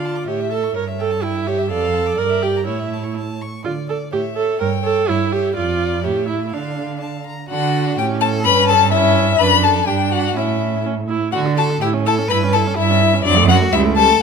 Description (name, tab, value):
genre	quick classical-period movement for string quartet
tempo	125 BPM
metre	2/4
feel	straight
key	D minor, D major from 7.5 s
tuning	A4 = 440 Hz
part	rich violin	melody	0.0-14.2 s	C#5 to B5	-19 LUFS	left 10 dB	none
part	clear violin	second line	0.0-14.2 s	D4 to D6	-24 LUFS	left 3 dB	none
part	rich viola	accompaniment	0.0-14.2 s	F#3 to Bb4	-21 LUFS	right 5 dB	none
part	warm cello	bass	0.0-14.2 s	C#2 to D3	-20 LUFS	right 6 dB	none
room	moderate recital hall reverb, RT60 1.8 s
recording	close, detailed microphones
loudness	-15 LUFS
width	side -6 dB against mid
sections	0.0-7.5 A section; 7.5-14.2 A section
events	none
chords	0.3 A; 0.8 A7/G; 1.7 Dm/F; 2.2 Em7b5/G; 2.7 A; 3.6 Dm; 4.1 A; 4.6 Gdim7(no3); 5.6 Dm/F; 6.0 A7; 6.5 Dm; 8.0 A; 8.5 A9/G; 9.4 D/F#; 9.9 Dadd11/G; 10.4 A; 11.3 D; 11.8 A; 12.3 A9/G; 13.2 D/F#; 13.7 A7/C#